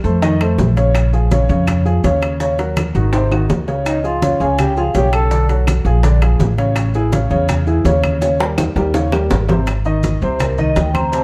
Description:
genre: Afro-Cuban jazz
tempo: 165 BPM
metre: 4/4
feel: straight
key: Ab major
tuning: A4 = 440 Hz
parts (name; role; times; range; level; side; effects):
- warm upright piano; accompaniment; 0.0-11.2 s; C3 to C6; -21 LUFS; equal; none
- upright bass; bass; 0.0-11.2 s; Ab1 to F2; -19 LUFS; equal; none
- bongos; percussion; 0.0-11.2 s; none; -27 LUFS; equal; none
- congas; percussion; 0.0-11.2 s; none; -25 LUFS; equal; none
- maracas; percussion; 0.0-11.2 s; none; -42 LUFS; equal; none
- timbales; percussion; 0.2-11.2 s; none; -28 LUFS; equal; none
- claves; percussion; 0.4-11.1 s; none; -34 LUFS; equal; none
- vibraphone with medium mallets; melody; 3.9-5.5, 10.2-11.2 s; Bb4 to Bb5; -23 LUFS; equal; none
- tenor recorder; second line; 3.9-5.5 s; Eb4 to A4; -24 LUFS; equal; none
room: light reverb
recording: dark, warm production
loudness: -16 LUFS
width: mono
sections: 0.0-9.7 A section; 9.7-11.2 B section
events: drum fill 3.1-3.9, 8.2-9.7; vibraphone solo 9.7-11.2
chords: 0.2 F7; 0.9 Bbm7; 2.4 Ebm7; 3.1 Ab7; 3.9 Db; 5.3 Bm7; 6.0 Bb7; 6.8 Amaj7; 8.2 Eb6; 9.7 Ab

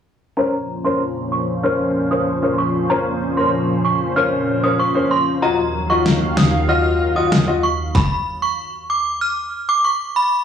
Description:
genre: dancehall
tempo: 95 BPM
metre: 4/4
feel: straight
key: Bb minor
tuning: A4 = 440 Hz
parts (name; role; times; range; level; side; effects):
- synth chime; melody; 0.4-10.3 s; Bb5 to F6; -20 LUFS; right 2 dB; ensemble chorus, tremolo, low-pass filter, analog delay
- clear grand piano; accompaniment; 0.4-7.6 s; Db4 to Eb5; -20 LUFS; left 3 dB; low-pass filter
- lush unison pad; sustained chords; 0.6-7.9 s; Eb2 to F5; -21 LUFS; equal; chorus, phaser, sidechain pumping, low-pass filter
- deep house drum kit; drums; 6.1-8.1 s; kick drum, rim click, snare drum; -16 LUFS; equal; none
room: light reverb, digital ambience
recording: dry, gritty hardware recording, transformer saturation, small room ambience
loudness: -16 LUFS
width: side -8 dB against mid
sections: 0.4-10.4 A section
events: filter sweep 0.4-10.4; stop 8.0-10.4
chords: 0.4 Bbmadd9; 5.4 Ebmadd9; 8.0 N.C.

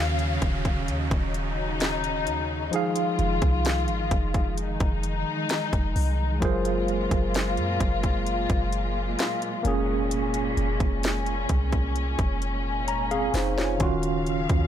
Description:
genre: contemporary R&B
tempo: 65 BPM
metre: 4/4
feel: straight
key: Eb dorian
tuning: A4 = 439 Hz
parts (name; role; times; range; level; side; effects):
- tine electric piano; accompaniment; 0.0-14.7 s; Eb3 to Bb5; -29 LUFS; right 3 dB; medium stereo tremolo
- warm studio string section; sustained chords; 0.0-14.7 s; Bb2 to F5; -29 LUFS; left 4 dB; sidechain pumping
- clean 808-style bass; bass; 0.0-14.7 s; Eb1 to Gb2; -28 LUFS; equal; none
- downlifter; sound effects; 0.0-6.4 s; none; -39 LUFS; right 1 dB; none
- trap drum kit; drums; 0.2-14.7 s; hi-hat, kick drum, snare drum; -27 LUFS; equal; none
room: little or no reverb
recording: none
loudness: -23 LUFS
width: side -10 dB against mid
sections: 0.0-14.7 A section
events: tine electric piano fill 12.4-13.8; drum fill 12.9-13.8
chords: 0.0 Ebm9; 2.7 Fm7; 6.4 Gbmaj9#11; 9.7 Bbm9/F; 13.8 Ebm9

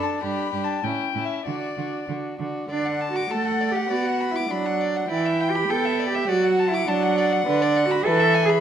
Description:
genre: quick classical-period movement for string quartet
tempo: 100 BPM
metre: 2/4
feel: straight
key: D major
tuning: A4 = 442 Hz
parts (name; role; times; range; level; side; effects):
- dark violin; melody; 0.0-8.6 s; D5 to B5; -29 LUFS; left 9 dB; none
- rich violin; second line; 0.0-8.6 s; E4 to D6; -29 LUFS; left 4 dB; none
- warm viola; accompaniment; 0.0-8.5 s; D3 to D4; -27 LUFS; right 2 dB; none
- warm cello; bass; 0.2-8.6 s; G2 to A4; -23 LUFS; right 4 dB; none
room: moderate recital hall reverb, RT60 1.4 s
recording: none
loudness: -20 LUFS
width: side -9 dB against mid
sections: 0.0-2.7 A section; 2.7-8.6 A section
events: none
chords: 0.2 G; 0.8 A7; 1.5 D; 3.9 Bm; 5.1 Em7; 6.3 D/F#; 7.5 Bm/D; 8.1 E

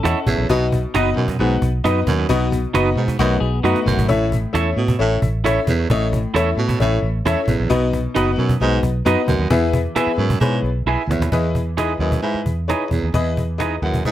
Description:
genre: uptempo 1960s-style soul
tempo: 133 BPM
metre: 4/4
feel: straight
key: E major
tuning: A4 = 442 Hz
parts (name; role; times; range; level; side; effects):
- clear upright piano; accompaniment; 0.0-14.1 s; A2 to B5; -22 LUFS; left 5 dB; none
- clean electric guitar; riff; 0.0-0.5, 3.2-4.1 s; A3 to A4; -25 LUFS; left 7 dB; none
- electric guitar through a small old amp; stabs; 0.0-13.8 s; D#4 to E5; -23 LUFS; right 7 dB; tape echo
- vintage muted fingered electric bass; bass; 0.0-14.0 s; F#1 to B2; -21 LUFS; equal; none
- cajon; drums; 0.1-14.1 s; none; -22 LUFS; equal; none
- breathy baritone saxophone; riff; 0.3-14.1 s; E2 to B2; -23 LUFS; right 5 dB; none
room: light reverb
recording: none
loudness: -16 LUFS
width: side -12 dB against mid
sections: 0.0-11.3 A section; 11.3-14.1 B section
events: drum fill 3.6-4.1, 10.9-11.3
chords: 0.5 B; 4.1 A; 7.7 B; 9.5 E; 11.3 Emaj7

